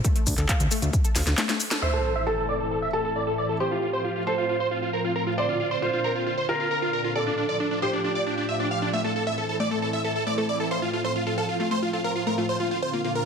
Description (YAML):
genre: uplifting trance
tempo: 135 BPM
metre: 4/4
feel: straight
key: A phrygian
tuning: A4 = 440 Hz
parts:
  - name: wide unison pluck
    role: arpeggios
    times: 0.0-1.7, 8.9-13.1 s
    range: A3 to F5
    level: -31 LUFS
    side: left 4 dB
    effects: sidechain pumping, tape echo
  - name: electronic kick drum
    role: drums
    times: 0.0-1.0 s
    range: none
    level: -23 LUFS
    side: equal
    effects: none
  - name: techno drum kit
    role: drums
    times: 0.0-1.8 s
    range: handclaps, hi-hat, shaker, snare drum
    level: -27 LUFS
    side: equal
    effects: low-pass filter on snare, low-pass filter on hats, low-pass filter on perc
  - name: fat analog bass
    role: bass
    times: 0.3-1.3 s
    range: D2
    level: -24 LUFS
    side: equal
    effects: sidechain pumping
  - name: big supersaw lead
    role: melody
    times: 1.8-13.2 s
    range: D4 to F5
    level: -26 LUFS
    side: right 1 dB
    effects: sidechain pumping, low-pass filter, ping-pong delay
  - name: felt-muted upright piano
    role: second line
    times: 1.8-8.8 s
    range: G4 to D5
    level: -28 LUFS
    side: right 1 dB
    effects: dub echo
  - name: lush unison pad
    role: sustained chords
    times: 1.8-13.2 s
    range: A2 to F4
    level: -30 LUFS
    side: right 1 dB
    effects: chorus, sidechain pumping
  - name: sub drop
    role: sound effects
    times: 1.8-3.6 s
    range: none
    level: -32 LUFS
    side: equal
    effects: none
room: moderate lush hall reverb, RT60 2.0 s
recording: none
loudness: -23 LUFS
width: side -6 dB against mid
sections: 0.0-1.8 A section; 1.8-13.3 B section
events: filter sweep on synth arpeggio sound 0.0-1.8; drum fill 1.2-1.8; kick drops out 1.4-1.8; band accent 1.7; impact 1.8-3.6; filter sweep on supersaw synth 1.8-13.3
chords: 0.0 D5; 1.8 Am; 3.6 F/A; 5.4 Bbadd9; 7.2 Dm; 8.9 Am; 10.7 F/A; 12.5 Bbadd9